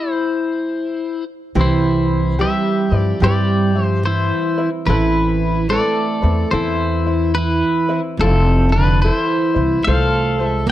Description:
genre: Hawaiian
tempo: 72 BPM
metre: 4/4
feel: swing 63% on 8ths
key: C major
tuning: A4 = 439 Hz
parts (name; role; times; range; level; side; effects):
- pedal steel guitar; melody; 0.0-10.7 s; C4 to F5; -19 LUFS; left 3 dB; none
- picked plugged-in steel-string acoustic guitar; second line; 1.6-10.7 s; C3 to C4; -21 LUFS; right 6 dB; none
- ukulele; accompaniment; 1.6-10.7 s; C4 to C5; -24 LUFS; left 3 dB; none
- upright bass; bass; 1.6-10.7 s; F1 to G2; -18 LUFS; equal; none
room: studio reverb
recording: dry, close 1970s-style studio recording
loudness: -15 LUFS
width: side -13 dB against mid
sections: 0.0-1.6 A section; 1.6-10.7 B section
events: stop 0.0-1.6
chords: 0.0 C; 1.6 Cmaj7; 4.9 Amadd9; 8.2 Fmaj7

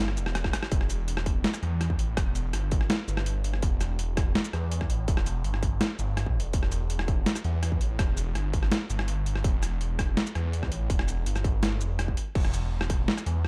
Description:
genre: half-time drum and bass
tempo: 165 BPM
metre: 4/4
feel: half-time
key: E minor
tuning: A4 = 442 Hz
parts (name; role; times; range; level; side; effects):
- phased detuned saw bass; bass; 0.0-13.5 s; E1 to E2; -31 LUFS; equal; phaser
- boom bap sampler-style drum kit; drums; 0.1-13.5 s; crash cymbal, hi-hat, rim click, shaker, snare drum; -34 LUFS; equal; overdrive
- electronic kick drum; drums; 0.4-13.0 s; none; -30 LUFS; equal; distortion
room: little or no reverb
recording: dark, warm production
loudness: -28 LUFS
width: mono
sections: 0.0-12.4 A section; 12.4-13.5 A section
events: drop 0.0-12.4, 12.4-13.5; drum fill 0.0-0.7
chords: none

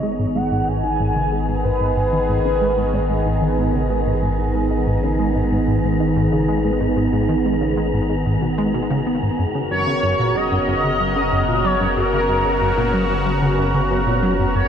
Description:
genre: ambient, sequencer-driven space music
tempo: 93 BPM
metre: 4/4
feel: straight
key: G# minor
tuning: A4 = 445 Hz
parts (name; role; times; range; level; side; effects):
- expressive synth lead; melody; 0.0-3.9, 9.7-14.7 s; A#4 to G#5; -22 LUFS; equal; ensemble chorus, tape echo
- sweeping resonant pad; sustained chords; 0.0-14.7 s; C#3 to A#4; -21 LUFS; right 1 dB; chorus, phaser
- plucky analog bass; riff; 0.0-14.6 s; F#2 to B3; -22 LUFS; equal; analog chorus, tape echo
- warm sub bass; bass; 0.0-14.7 s; F#1 to G#1; -25 LUFS; equal; none
- wind-like tuned noise texture; texture; 0.1-14.7 s; B3 to A#5; -29 LUFS; left 1 dB; built-in reverb
room: wet huge ambient reverb, RT60 7.6 s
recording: none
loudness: -17 LUFS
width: side -8 dB against mid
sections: 0.0-14.7 A section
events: fade-in on synth texture 0.0-14.7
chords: 0.0 G#m; 9.4 F#

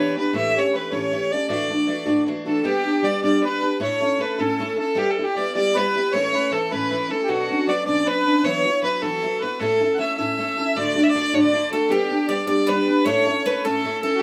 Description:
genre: celtic folk, Celtic jig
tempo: 104 BPM (dotted quarters)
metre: 6/8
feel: straight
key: unclear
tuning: A4 = 444 Hz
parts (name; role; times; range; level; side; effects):
- clear fiddle; melody; 0.0-14.2 s; F#4 to E5; -26 LUFS; equal; none
- accordion; second line; 0.0-14.2 s; F#4 to F#5; -29 LUFS; equal; none
- picked steel-string acoustic guitar; accompaniment; 0.0-14.2 s; D2 to A4; -25 LUFS; equal; none
- bowl-back mandolin; second line; 11.7-14.2 s; G4 to D5; -33 LUFS; equal; none
room: moderate small room ambience, RT60 0.5 s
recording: none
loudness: -21 LUFS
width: mono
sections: 0.0-2.7 A section; 2.7-11.9 B section; 11.9-14.2 B section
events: none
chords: 0.3 A7; 1.5 Dadd9; 2.7 G; 3.8 A; 5.0 Em/G; 6.1 A; 7.3 Bmadd9; 8.4 Esus2; 9.6 A; 10.8 D; 11.9 G; 13.1 A

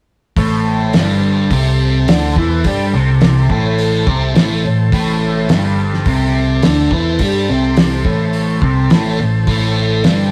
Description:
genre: psychedelic rock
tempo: 106 BPM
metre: 4/4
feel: straight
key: A minor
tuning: A4 = 441 Hz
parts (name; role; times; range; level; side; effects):
- combo organ; sustained chords; 0.4-10.3 s; A4 to A5; -27 LUFS; equal; none
- fuzz guitar; riff; 0.4-10.3 s; G2 to G4; -18 LUFS; equal; distortion, phaser
- picked electric bass; bass; 0.4-10.3 s; G1 to G2; -19 LUFS; equal; none
- cloth-damped thuddy drum kit; drums; 0.4-10.2 s; hi-hat, kick drum, snare drum; -19 LUFS; equal; none
room: moderate studio reverb, RT60 0.6 s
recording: rough rehearsal-room recording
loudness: -14 LUFS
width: mono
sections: 0.4-10.3 A section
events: none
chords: 0.4 Am

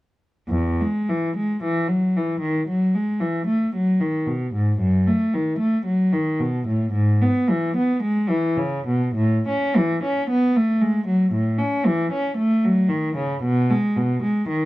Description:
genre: classical, baroque-style suite movement for unaccompanied cello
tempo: 56 BPM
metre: 4/4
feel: rubato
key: E major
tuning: A4 = 444 Hz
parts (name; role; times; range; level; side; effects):
- dark cello; solo; 0.5-14.7 s; E2 to C#4; -19 LUFS; equal; none
room: moderate studio ambience, RT60 0.5 s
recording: dark, warm production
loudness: -19 LUFS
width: side -18 dB against mid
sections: 0.5-14.7 A section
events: none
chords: none

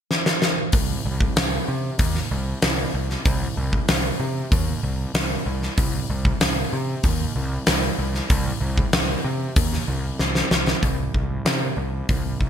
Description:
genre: hard rock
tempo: 95 BPM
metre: 4/4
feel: straight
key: C minor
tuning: A4 = 444 Hz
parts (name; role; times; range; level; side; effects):
- huge arena drum kit; drums; 0.1-12.5 s; hi-hat, kick drum, snare drum; -21 LUFS; equal; gated reverb
- fuzz picked electric bass; bass; 0.7-12.5 s; C2 to C3; -25 LUFS; equal; overdrive
room: light reverb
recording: bright 1980s-style digital production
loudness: -20 LUFS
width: side -9 dB against mid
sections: 0.7-10.8 A section; 10.8-12.5 B section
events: drum fill 0.1-0.7, 10.2-10.8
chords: none

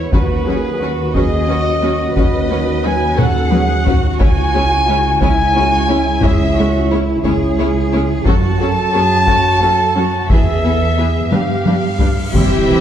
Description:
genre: cinematic, epic orchestral film score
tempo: 59 BPM (dotted quarters)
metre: 6/8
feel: straight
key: unclear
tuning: A4 = 438 Hz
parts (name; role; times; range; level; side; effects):
- warm studio violin section; melody; 0.0-12.8 s; B4 to A5; -26 LUFS; left 2 dB; none
- dark French horn section; sustained chords; 0.0-12.0 s; B3 to B4; -22 LUFS; left 1 dB; none
- bright trumpet section; stabs; 0.0-12.8 s; E4 to A5; -18 LUFS; equal; none
- warm studio cello section; bass; 0.0-12.8 s; E3 to B4; -24 LUFS; right 3 dB; none
- warm symphonic violin section; second line; 0.1-12.8 s; E4 to C#5; -27 LUFS; left 3 dB; none
- warm symphonic viola section; accompaniment; 0.1-12.8 s; E3 to E4; -22 LUFS; left 1 dB; none
- dark symphonic double bass section; bass; 0.1-12.8 s; C2 to G2; -18 LUFS; right 2 dB; none
- taiko ensemble; drums; 0.1-12.8 s; none; -17 LUFS; equal; none
- cymbal swell and impact; sound effects; 11.8-12.8 s; none; -26 LUFS; equal; none
- mellow hollow silver concert flute; second line; 12.3-12.8 s; G4; -19 LUFS; equal; none
- rich symphonic string section; sustained chords; 12.3-12.8 s; C4 to G5; -18 LUFS; right 2 dB; none
room: moderate scoring stage reverb, RT60 1.6 s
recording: dark, warm production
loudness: -12 LUFS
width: side -10 dB against mid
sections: 0.0-12.3 A section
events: drum fill 3.2-4.2, 11.3-12.3; cymbal swell 11.8-12.3; impact 12.3-12.8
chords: 0.1 Badd9/D#; 4.2 C#m; 8.3 F#m; 10.3 E; 11.3 G7

